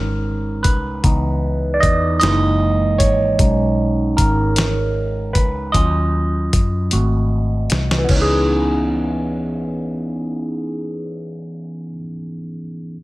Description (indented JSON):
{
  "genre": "slow six-eight R&B",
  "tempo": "51 BPM (dotted quarters)",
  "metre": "6/8",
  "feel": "straight",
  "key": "unclear",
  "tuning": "A4 = 440 Hz",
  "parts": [
    { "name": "overdriven tine electric piano", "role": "accompaniment", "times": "0.0-13.0 s", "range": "Fb3 to Eb5", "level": "-19 LUFS", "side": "right 1 dB", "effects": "phaser" },
    { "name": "vintage muted fingered electric bass", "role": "bass", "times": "0.0-11.9 s", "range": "Gb1 to Gb2", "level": "-20 LUFS", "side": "left 1 dB", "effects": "none" },
    { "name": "dusty soul sampler-style drum kit", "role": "drums", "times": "0.6-8.3 s", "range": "crash cymbal, hi-hat, kick drum, snare drum", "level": "-18 LUFS", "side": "left 1 dB", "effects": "none" }
  ],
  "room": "little or no reverb",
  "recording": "none",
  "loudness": "-16 LUFS",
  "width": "side -19 dB against mid",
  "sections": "0.0-8.1 A section; 8.1-10.4 B section",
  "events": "tine electric piano solo 0.0-8.1; drum fill 6.9-8.1",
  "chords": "0.0 Bbm11; 1.0 Dbm9; 2.2 Gb13; 3.4 Cb69; 5.7 Ebm9; 6.9 Ab7b9; 8.1 Dbm9"
}